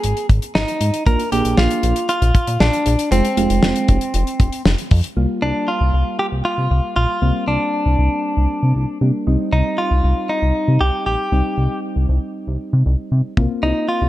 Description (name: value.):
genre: synth-pop.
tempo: 117 BPM.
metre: 4/4.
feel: straight.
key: unclear.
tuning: A4 = 441 Hz.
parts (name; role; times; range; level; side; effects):
direct-recorded clean electric guitar; melody; 0.0-14.1 s; C4 to Bb4; -20 LUFS; equal; ping-pong delay.
chorused synth bass; bass; 0.0-14.1 s; F1 to C3; -17 LUFS; equal; none.
damped 70s drum kit; drums; 0.0-5.2, 13.4-13.5 s; hi-hat, kick drum, snare drum; -18 LUFS; equal; none.
soft electric-piano-like synth keys; accompaniment; 1.1-14.1 s; G3 to Ab4; -24 LUFS; right 1 dB; chorus.
room: light reverb, studio reverb.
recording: dark, warm production.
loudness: -15 LUFS.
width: side -15 dB against mid.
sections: 0.0-5.2 A section; 5.2-14.1 B section.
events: none.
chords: 0.0 Ab5; 1.1 Bb; 3.1 Fm; 5.2 Gm7; 9.3 Cm; 13.4 Bbsus2.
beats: 0.04 0.55 | 1.06 1.58 2.09 2.60 | 3.12 3.63 4.14 4.65 | 5.17 5.68 6.19 6.71 | 7.22 7.73 8.24 8.76 | 9.27 9.78 10.29 10.81 | 11.32 11.83 12.35 12.86 | 13.37 13.88.